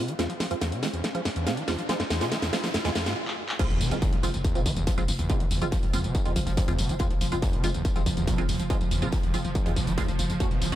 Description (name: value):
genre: driving peak-time techno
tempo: 141 BPM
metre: 4/4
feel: straight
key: F harmonic minor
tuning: A4 = 440 Hz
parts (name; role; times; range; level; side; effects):
- screaming distorted acid line; riff; 0.0-10.8 s; E2 to Gb3; -32 LUFS; equal; distortion, chorus, sidechain pumping
- filtered dub chord stab; stabs; 0.0-10.8 s; Ab3 to Gb4; -33 LUFS; right 2 dB; phaser, analog chorus, cassette tape, sidechain pumping, dub echo
- riser and impact; sound effects; 0.0-5.3 s; none; -35 LUFS; equal; none
- open jazz drum kit; drums; 0.1-10.8 s; hi-hat, snare drum; -45 LUFS; right 4 dB; none
- techno drum kit; drums; 0.1-10.8 s; crash cymbal, handclaps, hi-hat, snare drum, tambourine; -32 LUFS; equal; sidechain pumping on hats, sidechain pumping on perc, sidechain pumping on cymbals
- swarming drone; drone; 4.8-10.8 s; F3; -35 LUFS; right 4 dB; built-in reverb, sidechain pumping
- electronic kick drum; drums; 3.6-10.5 s; none; -26 LUFS; equal; distortion
- growling 808-style bass; bass; 3.7-10.8 s; F1 to Gb1; -31 LUFS; equal; sidechain pumping, low-pass filter
room: light reverb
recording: none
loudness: -24 LUFS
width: side -13 dB against mid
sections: 0.0-3.6 A section; 3.6-10.8 B section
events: build-up 0.0-3.6; drum fill 0.0-3.2, 3.3-3.6; riser 0.0-3.2; filter sweep on synth stab 0.0-3.6; stop 3.2-3.6; drop 3.6-10.8; impact 3.6-5.3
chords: 0.0 Fm